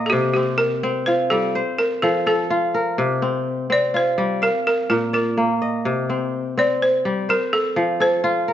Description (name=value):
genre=west african traditional, West African string and xylophone music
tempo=84 BPM (dotted quarters)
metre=12/8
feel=straight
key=C dorian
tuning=A4 = 435 Hz
part: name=kora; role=arpeggios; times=0.0-8.5 s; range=Bb2 to F5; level=-20 LUFS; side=left 1 dB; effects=none
part: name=balafon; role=melody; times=0.1-8.5 s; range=G4 to D5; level=-20 LUFS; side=right 1 dB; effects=none
room=moderate recital hall reverb, RT60 1.8 s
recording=nothing above 7.8 kHz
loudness=-18 LUFS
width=side -10 dB against mid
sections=0.0-8.5 A section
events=none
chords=0.1 Cm; 1.6 F; 3.0 C5; 4.4 Bb; 5.9 Cm; 7.3 F